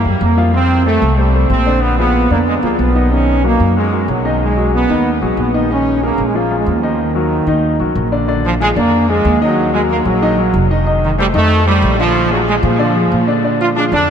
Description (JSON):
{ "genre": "latin, salsa", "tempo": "186 BPM", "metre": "4/4", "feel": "straight", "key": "Eb minor", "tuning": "A4 = 439 Hz", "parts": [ { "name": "brilliant trombone section", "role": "melody", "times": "0.0-14.1 s", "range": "Eb3 to F4", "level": "-15 LUFS", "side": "right 2 dB", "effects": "tape echo" }, { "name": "upright bass", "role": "bass", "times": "0.0-14.1 s", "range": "F1 to Bb2", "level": "-16 LUFS", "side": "equal", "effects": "none" }, { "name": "clear baby grand piano", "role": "accompaniment", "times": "0.1-14.1 s", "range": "D3 to F5", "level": "-18 LUFS", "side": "left 3 dB", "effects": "none" } ], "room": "wet huge ambient reverb, RT60 7.9 s", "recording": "dreamy mix soaked in reverb", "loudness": "-12 LUFS", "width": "side -8 dB against mid", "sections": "0.0-8.3 A section; 8.3-14.1 B section", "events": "none", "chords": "0.0 C7(no3) (rootless); 0.5 Fadd9; 1.8 Bb7b9; 3.1 Bmaj7; 4.4 Abm7/Cb; 5.7 Bb7sus4; 6.3 Bb5; 7.0 Ebm; 8.3 Bb7; 9.6 Ebmadd9; 10.9 F7; 12.2 Bb7" }